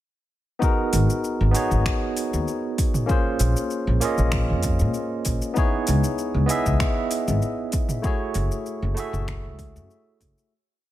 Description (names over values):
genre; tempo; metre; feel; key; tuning
sunset chillout; 97 BPM; 4/4; swing 54% on 16ths; unclear; A4 = 440 Hz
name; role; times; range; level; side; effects
barky tine electric piano; accompaniment; 0.6-10.5 s; A3 to E5; -25 LUFS; right 1 dB; auto-pan, tape echo
deep house drum kit; drums; 0.6-10.5 s; finger snaps, hi-hat, shaker, toms; -30 LUFS; equal; overdrive, small room ambience
electronic kick drum; drums; 0.6-10.3 s; none; -24 LUFS; equal; overdrive, small room ambience
upright bass; bass; 0.9-10.3 s; F#1 to A#2; -22 LUFS; equal; none
room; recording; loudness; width
light reverb; none; -20 LUFS; side -14 dB against mid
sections
0.6-10.5 groove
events
fade-out 7.2-10.5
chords
0.6 G#m9; 3.1 A#m9; 5.6 C#m9; 8.0 F#m9